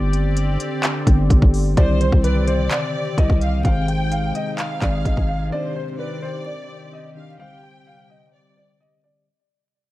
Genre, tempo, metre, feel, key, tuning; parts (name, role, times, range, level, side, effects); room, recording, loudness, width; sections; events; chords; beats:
hip hop, trap; 128 BPM; 4/4; half-time; C minor; A4 = 440 Hz
sweeping resonant pad; sustained chords; 0.0-9.3 s; C3 to D5; -29 LUFS; equal; chorus
growling 808-style bass; bass; 0.0-5.5 s; G1 to C2; -19 LUFS; equal
trap drum kit; drums; 0.1-5.3 s; handclaps, hi-hat, kick drum; -18 LUFS; equal
mellow tine electric piano; accompaniment; 1.7-9.3 s; D3 to D5; -28 LUFS; left 3 dB; phaser
dark concert grand piano; melody; 1.8-9.2 s; B4 to G5; -28 LUFS; equal; ping-pong delay
warm symphonic violin section; second line; 1.8-8.8 s; C5 to G5; -30 LUFS; right 1 dB; ping-pong delay
digital ambience; dark, warm production, vinyl crackle; -17 LUFS; side -17 dB against mid
0.0-1.8 A section; 1.8-9.3 B section
fade-out 1.8-9.3
0.0 Gsus4; 1.8 Cmadd9; 3.6 Ab; 5.5 Cmadd9; 7.4 Gsus4
0.37 0.83 1.30 | 1.77 2.24 2.71 3.18 | 3.65 4.12 4.58 5.05 | 5.52 5.99 6.46 6.93 | 7.40 7.87 8.33 8.80